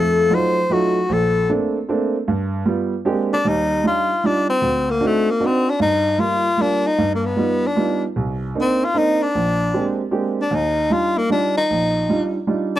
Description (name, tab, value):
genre	jazz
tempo	153 BPM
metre	3/4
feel	swing 64% on 8ths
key	Eb major from 3.4 s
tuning	A4 = 435 Hz
part	breathy tenor saxophone	melody	0.0-12.8 s	A3 to C5	-18 LUFS	left 2 dB	none
part	warm grand piano	accompaniment	0.0-12.7 s	Bb1 to G4	-20 LUFS	right 3 dB	none
room	small room ambience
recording	dry, close 1970s-style studio recording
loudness	-17 LUFS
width	side -13 dB against mid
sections	0.0-3.4 A section; 3.4-12.8 B section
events	tenor saxophone solo 0.0-3.4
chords	0.0 F7b9; 1.1 Bbmaj9; 2.3 G7; 3.1 Bb13; 3.4 Ebmaj9; 4.6 D7b9; 5.8 Gm7; 7.0 G7b13; 8.2 Cm9; 9.3 Bb13; 10.5 Ebmaj9